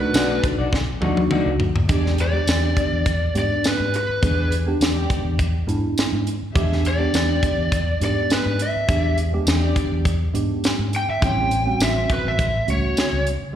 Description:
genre	straight-eighth soul blues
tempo	103 BPM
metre	4/4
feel	swing 53% on 16ths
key	unclear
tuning	A4 = 440 Hz
part	lead guitar through a small cranked amp	melody	0.0-13.3 s	B4 to G5	-23 LUFS	equal	overdrive, slapback echo
part	tine electric piano	accompaniment	0.0-13.6 s	G3 to G#4	-26 LUFS	right 3 dB	phaser, slapback echo
part	vintage muted fingered electric bass	bass	0.0-13.4 s	A1 to G#2	-23 LUFS	equal	none
part	dark studio string section	sustained chords	0.1-13.6 s	G4 to E5	-33 LUFS	left 2 dB	none
part	electric guitar through a small old amp	stabs	0.1-1.5 s	A3 to D5	-26 LUFS	left 6 dB	lush chorus, slapback echo
part	tight funk drum kit	drums	0.1-13.4 s	hi-hat, kick drum, snare drum, tambourine, toms	-22 LUFS	equal	none
room	light reverb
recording	live gig heard through the venue's PA, recital hall reverb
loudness	-18 LUFS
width	side -10 dB against mid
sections	0.0-1.9 A section; 1.9-13.6 B section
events	lead electric guitar solo 0.0-1.9; drum fill 0.7-1.9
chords	0.0 B7#9; 1.9 E7#9; 11.2 A7#9

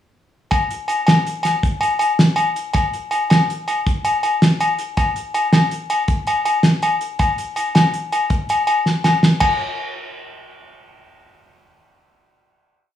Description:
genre	highlife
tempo	108 BPM (dotted quarters)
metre	12/8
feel	straight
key	none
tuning	none
part	damped 70s drum kit	drums	0.5-9.5 s	crash cymbal, hi-hat, kick drum, snare drum	-17 LUFS	equal	none
part	agogo bells	percussion	0.5-9.5 s	none	-18 LUFS	left 2 dB	none
room	wet studio reverb, RT60 0.6 s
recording	studio reverb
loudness	-16 LUFS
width	side -11 dB against mid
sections	0.5-9.4 A section; 9.4-11.6 final hit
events	drum fill 8.9-9.4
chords	none

